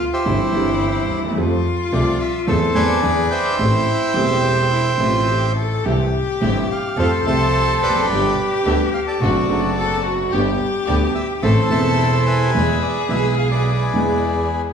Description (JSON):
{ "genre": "tango", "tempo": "107 BPM", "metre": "4/4", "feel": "rubato", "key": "A minor", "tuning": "A4 = 440 Hz", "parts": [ { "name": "bandoneon", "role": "melody", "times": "0.0-14.6 s", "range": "G4 to A5", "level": "-21 LUFS", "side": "right 1 dB", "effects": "none" }, { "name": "warm cello", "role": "second line", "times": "0.0-14.5 s", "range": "D#4 to A4", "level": "-23 LUFS", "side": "left 3 dB", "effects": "none" }, { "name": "clear upright piano", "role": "accompaniment", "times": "0.3-14.7 s", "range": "E1 to A4", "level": "-22 LUFS", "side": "right 1 dB", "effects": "none" }, { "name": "warm double bass", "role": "bass", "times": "0.3-14.7 s", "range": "E1 to F2", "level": "-22 LUFS", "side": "equal", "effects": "none" }, { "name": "dark chamber string section", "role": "stabs", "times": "5.8-14.7 s", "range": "A3 to A4", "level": "-28 LUFS", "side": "equal", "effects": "none" } ], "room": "wet large studio reverb, RT60 1.2 s", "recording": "band playing live in one room", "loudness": "-16 LUFS", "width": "side -7 dB against mid", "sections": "0.0-14.7 A section", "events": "none", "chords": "0.3 C/G; 1.4 Fadd9; 2.5 Am/E; 3.0 E7; 3.6 Am7; 5.8 C; 7.0 Fadd9; 8.1 G; 9.2 D7/F#; 10.3 G; 11.4 Am; 12.5 E" }